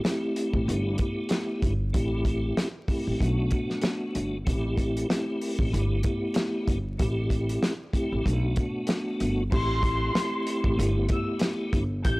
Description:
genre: hip hop, boom-bap hip-hop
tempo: 95 BPM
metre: 4/4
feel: swing 57% on 16ths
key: A dorian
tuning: A4 = 440 Hz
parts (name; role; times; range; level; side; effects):
- tonewheel organ; accompaniment; 0.0-12.2 s; A3 to G4; -29 LUFS; equal; overdrive, chorus vibrato, slow rotary speaker, cassette tape, high-pass filter, low-pass filter
- warm soul drum kit; drums; 0.0-12.2 s; crash cymbal, hi-hat, kick drum, snare drum; -28 LUFS; equal; none
- upright bass; bass; 0.5-12.2 s; G1 to B1; -28 LUFS; equal; none
- rich studio violin section; melody; 9.5-12.2 s; C6 to G6; -31 LUFS; left 1 dB; high-pass filter, low-pass filter
room: studio reverb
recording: transformer saturation, vinyl crackle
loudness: -24 LUFS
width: side -23 dB against mid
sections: 0.0-9.5 A section; 9.5-12.2 B section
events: none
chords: 0.0 Am7; 0.7 G69; 1.9 Am7; 3.2 Bm7; 4.5 Am7; 5.7 G69; 7.0 Am7; 8.3 Bm7; 9.5 Am7; 10.8 G69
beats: 0.05 0.68 1.31 | 1.94 2.57 3.21 3.84 | 4.47 5.10 5.73 6.36 | 6.99 7.63 8.26 8.89 | 9.52 10.15 10.78 11.41 | 12.05

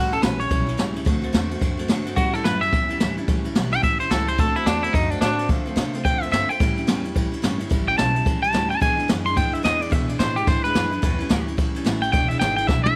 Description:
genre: rockabilly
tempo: 217 BPM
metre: 4/4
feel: swing 62% on 8ths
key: A mixolydian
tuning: A4 = 440 Hz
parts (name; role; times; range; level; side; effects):
- twangy electric guitar; melody; 0.0-13.0 s; D4 to C6; -25 LUFS; equal; vibrato effect, tape echo
- picked steel-string acoustic guitar; accompaniment; 0.0-13.0 s; E2 to F#4; -29 LUFS; equal; none
- upright bass; bass; 0.0-13.0 s; E1 to D3; -31 LUFS; equal; none
- jazz brush drum kit; drums; 0.1-12.9 s; kick drum, ride cymbal, snare drum, toms; -25 LUFS; equal; none
room: small room ambience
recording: none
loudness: -22 LUFS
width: mono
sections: 0.0-13.0 A section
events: clean electric guitar solo 0.0-13.0; drum fill 12.7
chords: 0.0 A7; 1.1 D7; 2.2 A7; 4.4 D7; 5.5 Dm7; 6.6 A7; 8.8 E7; 11.0 A7; 12.1 E7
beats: 0.23 0.51 0.79 | 1.06 1.34 1.62 1.89 | 2.17 2.45 2.73 3.00 | 3.28 3.56 3.83 4.11 | 4.38 4.66 4.94 5.22 | 5.49 5.77 6.05 6.32 | 6.60 6.88 7.15 7.43 | 7.71 7.98 8.26 8.54 | 8.81 9.09 9.37 9.64 | 9.92 10.20 10.47 10.75 | 11.03 11.30 11.58 11.86 | 12.13 12.41 12.69

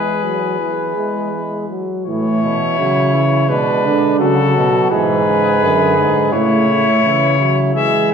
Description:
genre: classical, imitative canzona for brass ensemble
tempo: 84 BPM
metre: 4/4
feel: straight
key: A major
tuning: A4 = 442 Hz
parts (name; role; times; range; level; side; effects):
- warm trumpet; melody; 0.0-8.1 s; A4 to E5; -18 LUFS; left 6 dB; none
- warm flugelhorn; second line; 0.0-8.1 s; D4 to G#4; -19 LUFS; right 5 dB; none
- mellow trombone; accompaniment; 0.0-8.1 s; C#3 to G#3; -22 LUFS; equal; none
- warm euphonium; bass; 0.0-8.1 s; E2 to E3; -18 LUFS; right 1 dB; none
room: wet recital hall reverb, RT60 1.5 s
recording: recorded in a church or concert hall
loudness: -13 LUFS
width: side -6 dB against mid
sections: 0.0-2.1 A section; 2.1-7.8 B section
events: none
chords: 0.0 E; 2.1 A; 3.5 Bm; 4.9 E/G#; 6.3 A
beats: 0.61 1.34 | 2.06 2.78 3.49 4.21 | 4.92 5.62 6.33 7.04 | 7.76

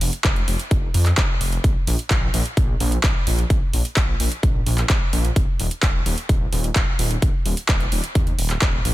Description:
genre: EDM, festival progressive house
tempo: 129 BPM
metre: 4/4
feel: straight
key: unclear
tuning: A4 = 439 Hz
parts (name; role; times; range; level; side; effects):
- wide detuned saw bass; bass; 0.0-8.9 s; Eb1 to F2; -22 LUFS; equal; chorus, sidechain pumping
- big-room dance drum kit; drums; 0.0-8.9 s; handclaps, hi-hat; -25 LUFS; equal; overdrive, small room ambience
- electronic kick drum; drums; 0.2-8.7 s; none; -20 LUFS; equal; overdrive, small room ambience
room: little or no reverb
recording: dense, heavily limited modern master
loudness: -18 LUFS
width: side -16 dB against mid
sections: 0.0-8.9 A section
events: none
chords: none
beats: 0.25 0.71 1.18 | 1.64 2.11 2.57 3.04 | 3.50 3.97 4.43 4.90 | 5.36 5.83 6.29 6.76 | 7.22 7.69 8.15 8.62

